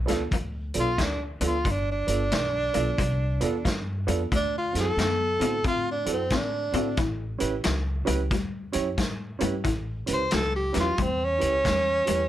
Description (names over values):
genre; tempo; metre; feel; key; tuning
electric blues shuffle; 90 BPM; 4/4; swing 64% on 8ths; unclear; A4 = 435 Hz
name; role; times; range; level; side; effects
electric guitar through a small old amp; riff; 0.0-12.3 s; G2 to C4; -32 LUFS; left 4 dB; ensemble chorus
upright bass; bass; 0.0-12.3 s; G1 to A2; -30 LUFS; equal; none
dark upright piano; accompaniment; 0.1-12.2 s; B3 to C#5; -30 LUFS; right 6 dB; none
vintage drum kit; drums; 0.1-12.2 s; hi-hat, kick drum, snare drum; -30 LUFS; equal; none
bright tenor saxophone; melody; 0.8-12.3 s; C4 to C5; -26 LUFS; right 1 dB; none
room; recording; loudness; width
light reverb; none; -24 LUFS; side -12 dB against mid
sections
0.0-12.3 A section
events
none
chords
0.0 G7; 4.3 D7; 7.0 A7